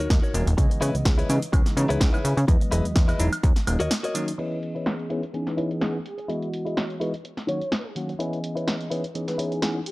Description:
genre	filtered disco house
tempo	126 BPM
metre	4/4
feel	swing 54% on 16ths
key	C# dorian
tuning	A4 = 440 Hz
part	direct-recorded clean electric guitar	riff	0.0-9.8 s	D#4 to D#5	-30 LUFS	left 2 dB	vintage 12-bit sampler grit, sidechain pumping, low-pass filter
part	plucky analog bass	bass	0.0-3.9 s	D#1 to C#3	-24 LUFS	equal	sidechain pumping, low-pass filter
part	punchy analog drum machine	drums	0.0-9.9 s	crash cymbal, hi-hat, shaker, snare drum, woodblock	-29 LUFS	equal	sidechain pumping on hats, low-pass filter on hats, sidechain pumping on perc, low-pass filter on perc, low-pass filter on snare, sidechain pumping on cymbals, low-pass filter on cymbals, low-pass filter on room
part	electronic kick drum	drums	0.1-3.5 s	none	-20 LUFS	equal	none
part	bell-like tine electric piano	accompaniment	0.3-9.8 s	C#3 to D#5	-29 LUFS	equal	fast stereo tremolo, phaser, vintage 12-bit sampler grit, sidechain pumping, low-pass filter
part	mellow horn section	melody	5.5-9.9 s	G#4 to C#5	-35 LUFS	equal	sidechain pumping, low-pass filter, analog delay
room	digital ambience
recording	dry, gritty hardware recording, cassette tape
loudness	-22 LUFS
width	side -21 dB against mid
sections	0.0-4.4 A section; 4.4-9.9 B section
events	break 3.9-4.4; filter sweep on drum 4.4-9.9; filter sweep 4.4-9.9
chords	0.0 D#m7; 0.6 C#m7; 2.5 Emaj7; 3.4 D#m7; 4.4 C#m7; 6.3 Emaj7; 7.2 D#m7; 8.2 C#m7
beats	0.10 | 0.58 1.06 1.53 2.01 | 2.49 2.96 3.44 3.91 | 4.39 4.87 5.34 5.82 | 6.29 6.77 7.25 7.72 | 8.20 8.68 9.15 9.63

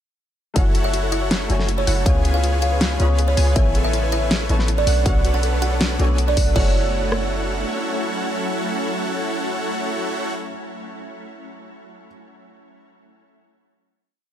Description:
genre	future bass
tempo	160 BPM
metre	4/4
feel	half-time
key	F# minor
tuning	A4 = 441 Hz
part	felt-muted upright piano	accompaniment	0.5-12.1 s	A3 to G#5	-31 LUFS	left 4 dB	sidechain pumping, dub echo
part	buzzing kalimba	melody	0.6-10.5 s	C#5 to F#5	-26 LUFS	right 3 dB	sidechain pumping, ping-pong delay
part	shimmering ambient pad	sustained chords	1.2-10.3 s	C#3 to E#4	-30 LUFS	equal	chorus, built-in reverb, sidechain pumping
part	thumb-piano-like synth pluck	arpeggios	0.6-6.7 s	E4 to F#5	-35 LUFS	left 3 dB	none
part	wide unison pluck	arpeggios	0.6-10.5 s	F#5 to B5	-37 LUFS	equal	none
part	supersaw chords	riff	0.6-10.3 s	D4 to B5	-26 LUFS	equal	sidechain pumping
part	warm 808-style bass	bass	0.6-7.6 s	F#1 to C#2	-20 LUFS	equal	sidechain pumping
part	big-room dance drum kit	drums	0.6-7.2 s	kick drum, rim click	-19 LUFS	equal	none
part	big-room dance drum kit	drums	0.6-6.6 s	crash cymbal, hi-hat, snare drum	-25 LUFS	left 1 dB	none
room	little or no reverb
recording	none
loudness	-18 LUFS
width	side -10 dB against mid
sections	0.6-6.6 drop; 6.6-9.6 final chord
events	drop 0.6-6.6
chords	0.6 F#m7; 2.1 C#7; 3.6 Amaj9; 4.9 Bm9; 6.6 F#m7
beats	| 0.56 0.94 1.31 1.69 | 2.06 2.44 2.81 3.19 | 3.56 3.94 4.31 4.68 | 5.06 5.43 5.81 6.18 | 6.56 6.93 7.31 7.68 | 8.06 8.44 8.81 9.19

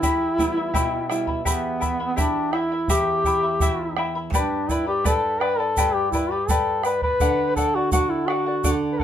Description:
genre	andean folk, Andean ensemble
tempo	84 BPM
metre	2/4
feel	straight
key	E minor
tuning	A4 = 440 Hz
part	warm duduk	melody	0.0-9.0 s	B3 to B4	-23 LUFS	left 1 dB	none
part	charango	accompaniment	0.0-9.0 s	E4 to B5	-26 LUFS	left 4 dB	none
part	nylon-string guitar	accompaniment	0.0-9.0 s	E2 to E4	-29 LUFS	right 3 dB	none
part	bombo	percussion	0.0-9.0 s	none	-26 LUFS	right 2 dB	none
part	tube shaker	percussion	0.0-8.8 s	none	-32 LUFS	right 7 dB	none
room	wet small room reverb, RT60 0.5 s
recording	minimal, uncompressed stereo recording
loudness	-20 LUFS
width	side -10 dB against mid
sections	0.0-1.5 A section; 1.5-9.0 A section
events	none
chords	0.0 Em; 4.3 G; 7.2 D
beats	| 0.03 0.74 | 1.46 2.18 | 2.90 3.61 | 4.33 5.05 | 5.77 6.49 | 7.21 7.93 | 8.64

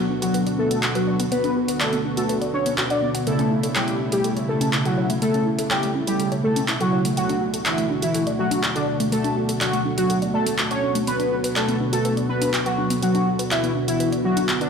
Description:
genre	melodic techno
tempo	123 BPM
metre	4/4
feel	straight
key	B minor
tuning	A4 = 440 Hz
part	fat analog lead	melody	0.0-14.7 s	D4 to D5	-25 LUFS	equal	analog chorus, ping-pong delay
part	airy dreamy lead	second line	0.0-14.7 s	D3 to D4	-27 LUFS	left 1 dB	chorus
part	deep dark ambient pad	sustained chords	0.0-14.7 s	B2 to A4	-29 LUFS	left 1 dB	chorus, built-in reverb
part	woody wave-folded pluck	arpeggios	0.0-14.7 s	A3 to F#5	-29 LUFS	left 2 dB	chorus, ping-pong delay
part	analog synth brass	stabs	0.0-14.7 s	C#3 to F#4	-27 LUFS	right 2 dB	chorus, ping-pong delay
part	techno drum kit	drums	0.2-14.7 s	handclaps, hi-hat	-27 LUFS	equal	none
room	light reverb, digital ambience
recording	played on a big sound system in a bare room, stone room reverb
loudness	-19 LUFS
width	side -6 dB against mid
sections	0.0-14.7 A section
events	filter sweep on digital synth lead 0.0-14.7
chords	0.0 Bm; 3.3 A/B; 7.2 D/B; 11.1 Bm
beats	0.34 0.83 | 1.32 1.81 2.29 2.78 | 3.27 3.76 4.25 4.73 | 5.22 5.71 6.20 6.68 | 7.17 7.66 8.15 8.63 | 9.12 9.61 10.10 10.59 | 11.07 11.56 12.05 12.54 | 13.03 13.51 14.00 14.49

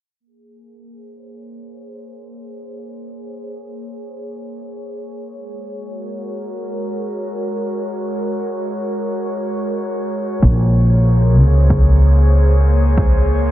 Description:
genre	ambient dub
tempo	free time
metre	none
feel	none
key	Bb minor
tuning	A4 = 440 Hz
part	airy breathy pad	sustained chords	0.2-13.5 s	Ab3 to Db5	-24 LUFS	equal	chorus
part	upright bass	bass	10.4-13.5 s	Bb1 to Db2	-11 LUFS	equal	none
part	electronic kick drum	drums	10.4-13.1 s	none	-17 LUFS	equal	none
room	studio ambience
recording	low-pass filter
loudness	-14 LUFS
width	side -14 dB against mid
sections	0.2-13.5 A section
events	fade-in on analog synth pad 0.2-13.5; filter sweep 0.2-13.5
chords	0.2 Bbm9; 5.3 Ab9sus4; 10.4 Bbm9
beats	free time

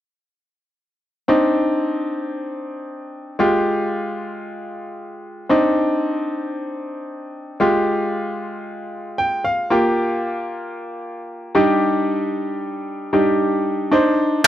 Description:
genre	pop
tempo	114 BPM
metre	4/4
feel	straight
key	C minor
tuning	A4 = 441 Hz
part	bright grand piano	accompaniment	1.3-14.5 s	G3 to G5	-19 LUFS	equal	none
room	light reverb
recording	dry, close 1970s-style studio recording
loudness	-18 LUFS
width	side -12 dB against mid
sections	1.3-5.5 A section; 5.5-14.5 B section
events	grand piano fill 8.9-9.7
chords	1.3 Cmadd9; 3.4 Fmadd9; 5.5 Cmadd9; 7.6 Fmadd9; 9.7 Gm7; 11.6 Ebmaj7/G; 13.9 Cmadd9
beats	| 1.29 1.81 2.34 2.87 | 3.39 3.92 4.45 4.97 | 5.50 6.02 6.55 7.08 | 7.60 8.13 8.66 9.18 | 9.71 10.23 10.76 11.29 | 11.81 12.34 12.87 13.39 | 13.92 14.45

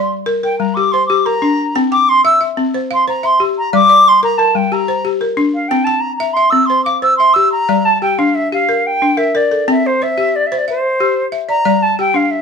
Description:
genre	west african traditional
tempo	121 BPM (dotted quarters)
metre	12/8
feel	straight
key	G dorian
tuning	A4 = 440 Hz
part	silver concert flute	melody	0.0-12.4 s	C5 to E6	-13 LUFS	equal	plate reverb
part	balafon	arpeggios	0.0-12.4 s	G3 to G5	-16 LUFS	left 3 dB	none
room	moderate studio reverb, RT60 0.6 s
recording	none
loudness	-11 LUFS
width	side -6 dB against mid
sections	0.0-7.7 A section; 7.7-12.4 B section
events	flute solo 0.0-7.7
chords	0.0 Gm; 1.8 C; 3.7 Gm; 5.7 C; 7.7 Gm; 9.7 C; 11.7 Gm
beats	0.27 0.76 1.26 | 1.75 2.25 2.74 3.23 | 3.73 4.22 4.72 5.21 | 5.71 6.20 6.70 7.20 | 7.69 8.19 8.68 9.18 | 9.67 10.17 10.67 11.16 | 11.66 12.16

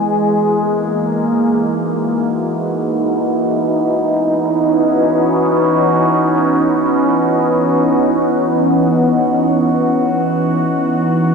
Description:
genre	ambient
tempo	free time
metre	none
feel	none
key	C# dorian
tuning	A4 = 441 Hz
part	evolving wavetable pad	solo	0.0-11.3 s	E3 to F#4	-13 LUFS	equal	phaser, built-in reverb
room	wet huge ambient reverb, RT60 8.1 s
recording	cassette tape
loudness	-13 LUFS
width	side -5 dB against mid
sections	0.0-11.3 A section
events	none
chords	0.0 Emaj9#11; 3.2 C#m11; 9.6 F#9sus4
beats	free time

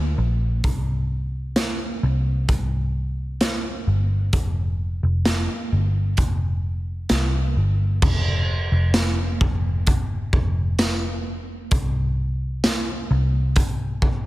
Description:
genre	dream pop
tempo	65 BPM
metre	4/4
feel	straight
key	unclear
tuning	A4 = 439 Hz
part	vintage muted picked electric bass	bass	0.0-14.3 s	F1 to D2	-22 LUFS	equal	none
part	raw garage drum kit	drums	0.6-14.2 s	crash cymbal, hi-hat, kick drum, snare drum, tambourine	-23 LUFS	equal	none
room	light reverb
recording	dense, heavily limited modern master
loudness	-20 LUFS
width	side -17 dB against mid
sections	0.0-8.0 A section; 8.0-14.3 B section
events	none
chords	none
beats	| 0.64 1.56 2.49 3.41 | 4.33 5.26 6.18 7.10 | 8.03 8.95 9.87 10.80 | 11.72 12.64 13.56

